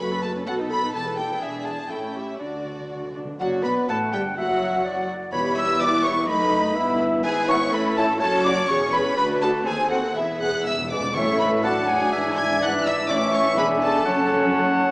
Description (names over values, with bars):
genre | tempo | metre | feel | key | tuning
quick classical-period movement for symphony orchestra | 124 BPM | 2/4 | straight | D major, A major from 7.2 s | A4 = 439 Hz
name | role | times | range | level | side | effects
warm chamber violin section | melody | 0.0-14.3 s | D5 to G#6 | -27 LUFS | equal | none
warm chamber violin section | second line | 0.0-14.3 s | E4 to G#5 | -30 LUFS | left 1 dB | none
warm chamber viola section | accompaniment | 0.0-14.9 s | F#3 to B4 | -28 LUFS | equal | none
dark chamber cello section | bass | 0.0-14.9 s | D2 to D3 | -32 LUFS | equal | none
dark chamber double bass section | bass | 0.0-14.9 s | E1 to D#2 | -39 LUFS | equal | none
timpani | percussion | 2.4-6.0, 10.2-13.5 s | E2 to D3 | -36 LUFS | equal | none
hollow concert flute | second line | 3.4-14.9 s | E5 to E6 | -26 LUFS | equal | none
mellow clarinet | second line | 3.4-14.9 s | G#4 to F#5 | -26 LUFS | equal | none
mellow French horn section | sustained chords | 3.4-14.9 s | E3 to A4 | -27 LUFS | equal | none
dark cor anglais | second line | 11.2-14.9 s | C#5 to D5 | -28 LUFS | equal | none
room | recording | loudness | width
wet scoring stage reverb, RT60 1.5 s | small speaker sound | -19 LUFS | side -25 dB against mid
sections
0.0-3.4 A section; 3.4-11.2 B section; 11.2-14.9 C section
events
timpani fill 2.4-3.4, 10.2-11.2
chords
0.0 F#m; 0.5 B7; 0.9 Em; 1.4 E7; 1.9 A7; 2.4 D; 3.4 Bm/F#; 4.4 Esus2/F#; 5.3 Em; 6.3 B7/F#; 6.8 Em/G; 7.2 E/G#; 7.7 A; 8.2 F#m; 8.7 C#m/E; 9.2 Bm/D; 9.7 D#dim7; 10.2 E; 11.2 A; 11.7 D/A; 12.1 E7/G#; 13.1 A; 13.6 E7; 14.1 F#m